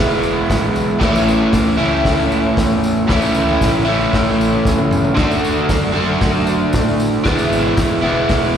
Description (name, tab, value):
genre	garage rock duo or trio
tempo	116 BPM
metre	4/4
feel	straight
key	unclear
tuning	A4 = 444 Hz
part	overdriven electric guitar	riff	0.0-8.6 s	A2 to F#4	-15 LUFS	equal	none
part	growling picked electric bass	bass	0.0-8.6 s	E1 to A2	-22 LUFS	equal	overdrive
part	tambourine	percussion	0.1-8.5 s	none	-36 LUFS	left 2 dB	none
part	vintage drum kit	drums	0.5-8.4 s	crash cymbal, hi-hat, kick drum, snare drum, toms	-20 LUFS	equal	none
room	light reverb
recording	live gig heard through the venue's PA, recital hall reverb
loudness	-13 LUFS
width	side -8 dB against mid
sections	0.0-8.6 A section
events	drum fill 4.7-5.2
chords	0.0 E; 1.0 A; 5.2 D; 7.2 E